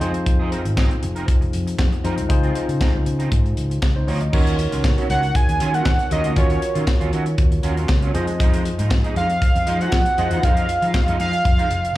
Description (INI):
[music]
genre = early-eighties boogie funk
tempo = 118 BPM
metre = 4/4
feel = straight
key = Eb dorian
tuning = A4 = 441 Hz
[part]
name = barky tine electric piano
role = accompaniment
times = 0.0-12.0 s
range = F3 to Eb5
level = -28 LUFS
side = moving between left 6 dB and right 1 dB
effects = overdrive, auto-pan, slapback echo
[part]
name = electric guitar at the edge of break-up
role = riff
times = 0.0-11.9 s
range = F3 to Bb4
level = -29 LUFS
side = right 4 dB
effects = ensemble chorus, slapback echo
[part]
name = fingered electric bass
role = bass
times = 0.0-11.9 s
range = F1 to F3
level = -21 LUFS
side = equal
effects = none
[part]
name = tight funk drum kit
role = drums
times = 0.0-12.0 s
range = crash cymbal, handclaps, hi-hat, kick drum, snare drum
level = -20 LUFS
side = equal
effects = none
[part]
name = fat analog lead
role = melody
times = 5.1-12.0 s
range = Db5 to Ab5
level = -21 LUFS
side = right 2 dB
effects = slapback echo
[part]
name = analog synth brass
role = second line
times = 5.7-6.3, 9.8-10.5 s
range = Bb3 to C5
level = -31 LUFS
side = right 1 dB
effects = chorus, slapback echo
[sound]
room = small room ambience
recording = live gig heard through the venue's PA, club reverb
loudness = -17 LUFS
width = side -16 dB against mid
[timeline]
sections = 0.0-4.3 A section; 4.3-12.0 B section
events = none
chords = 0.0 Fm7; 2.3 Dbmaj9; 4.3 Ebm9; 8.1 Fm7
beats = | 0.27 0.77 1.28 1.79 | 2.30 2.81 3.32 3.82 | 4.33 4.84 5.35 5.86 | 6.37 6.88 7.38 7.89 | 8.40 8.91 9.42 9.93 | 10.43 10.94 11.45 11.96